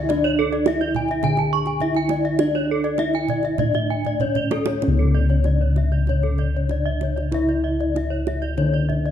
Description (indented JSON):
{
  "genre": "Balinese gamelan",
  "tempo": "96-108 BPM",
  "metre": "4/4",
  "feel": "straight",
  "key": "unclear",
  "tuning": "A4 = 440 Hz",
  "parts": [
    { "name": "gamelan-type bronze metallophone", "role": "melody", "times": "0.0-9.1 s", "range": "C#4 to G#4-30c", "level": "-26 LUFS", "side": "right 3 dB", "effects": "none" },
    { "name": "gamelan-type bronze metallophone", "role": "arpeggios", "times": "0.0-9.1 s", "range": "A4-20c to G#5-30c", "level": "-26 LUFS", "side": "left 6 dB", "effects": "none" },
    { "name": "gamelan-type bossed gongs", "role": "bass", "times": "0.0-9.1 s", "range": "C#2 to E4-30c", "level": "-21 LUFS", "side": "left 1 dB", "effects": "none" },
    { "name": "kendang", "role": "percussion", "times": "0.1-9.0 s", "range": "none", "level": "-28 LUFS", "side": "right 7 dB", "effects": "none" },
    { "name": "gamelan-type bronze metallophone", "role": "arpeggios", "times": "0.2-9.0 s", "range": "A4-20c to C#6", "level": "-28 LUFS", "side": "right 6 dB", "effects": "none" }
  ],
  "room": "moderate recital hall reverb, RT60 1.6 s",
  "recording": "dark, warm production",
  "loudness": "-18 LUFS",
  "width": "side -10 dB against mid",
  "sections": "0.0-4.8 A section; 4.8-9.1 B section",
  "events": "drum fill 4.0-4.8",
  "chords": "none"
}